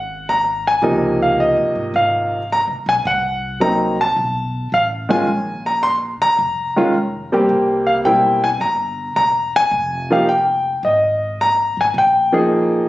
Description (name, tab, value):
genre	jazz piano trio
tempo	108 BPM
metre	4/4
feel	swing 68% on 8ths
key	F minor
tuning	A4 = 439 Hz
part	warm concert grand piano	melody	0.0-12.9 s	C3 to C6	-15 LUFS	equal	none
part	upright bass	bass	0.0-12.8 s	E1 to Ab2	-29 LUFS	equal	none
room	moderate studio ambience, RT60 0.4 s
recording	recorded on a phone in the room, studio reverb, compression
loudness	-15 LUFS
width	side -16 dB against mid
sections	0.0-12.9 A section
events	none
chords	0.0 Gbadd9/Ab; 0.8 Dbmaj9; 3.0 Cm7b5; 4.2 B7(b5, no3); 5.3 Bb7(no3); 7.5 C7; 9.7 Fm9; 11.9 Bb5